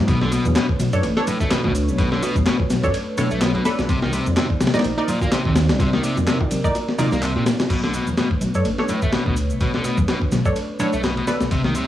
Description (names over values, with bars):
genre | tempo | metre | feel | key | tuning
breakbeat, breaks | 126 BPM | 4/4 | swing 56% on 16ths | unclear | A4 = 440 Hz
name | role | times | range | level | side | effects
dark analog pad | sustained chords | 0.0-11.9 s | A3 to D5 | -29 LUFS | equal | chorus, sidechain pumping
dark detuned saw bass | bass | 0.0-11.8 s | A1 to C3 | -23 LUFS | equal | none
biting overdriven guitar | riff | 0.1-11.9 s | A2 to Bb3 | -25 LUFS | left 1 dB | vintage 12-bit sampler grit, low-pass filter, tape echo
breakbeat sampler-style drum kit | drums | 0.1-11.9 s | crash cymbal, kick drum, ride cymbal, snare drum | -22 LUFS | left 1 dB | none
garage drum kit | drums | 0.1-11.9 s | handclaps, ride cymbal, shaker | -34 LUFS | equal | none
congas and bongos | percussion | 0.2-11.7 s | none | -29 LUFS | right 1 dB | none
filtered dub chord stab | stabs | 0.9-11.5 s | D4 to D5 | -26 LUFS | right 2 dB | analog chorus, tape echo
room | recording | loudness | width
digital ambience | dry, gritty hardware recording, vinyl crackle, small room ambience | -18 LUFS | side -12 dB against mid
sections
0.0-7.7 A section; 7.7-11.9 B section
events
drop 0.0-7.7; kick drops out 6.8-7.7; band accent 7.2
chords
0.1 Bm9; 3.9 Cm9; 7.7 Bm9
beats
| 0.08 0.56 1.04 1.51 | 1.99 2.46 2.94 3.42 | 3.89 4.37 4.84 5.32 | 5.80 6.27 6.75 7.23 | 7.70 8.18 8.65 9.13 | 9.61 10.08 10.56 11.04 | 11.51